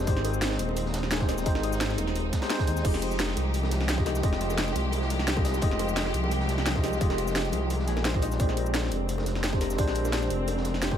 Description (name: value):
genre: liquid drum and bass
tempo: 173 BPM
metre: 4/4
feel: straight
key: F dorian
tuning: A4 = 440 Hz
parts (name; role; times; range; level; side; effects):
- bright tine electric piano; accompaniment; 0.0-11.0 s; Ab3 to G5; -32 LUFS; right 1 dB; medium stereo tremolo, dub echo
- clear symphonic string section; sustained chords; 0.0-11.0 s; F3 to G4; -35 LUFS; equal; sidechain pumping
- Celtic harp; arpeggios; 0.0-11.0 s; D4 to Eb5; -36 LUFS; left 9 dB; dub echo
- swelling detuned saw bass; bass; 0.0-11.0 s; Eb1 to Eb2; -29 LUFS; equal; tube saturation
- crunchy breakbeat drum kit; drums; 0.0-10.9 s; hi-hat, snare drum; -41 LUFS; right 1 dB; high-pass filter on hats, high-pass filter on snare, high-pass filter on room
- drum and bass drum kit; drums; 0.1-10.9 s; crash cymbal, hi-hat, shaker, snare drum; -32 LUFS; equal; overdrive
- electronic kick drum; drums; 0.1-11.0 s; none; -27 LUFS; equal; none
- bongos; percussion; 0.2-11.0 s; none; -41 LUFS; left 6 dB; none
room: little or no reverb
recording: none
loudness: -24 LUFS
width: side -9 dB against mid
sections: 0.0-11.0 A section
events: none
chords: 0.1 Abmaj7; 2.8 Fm9; 8.4 Bb13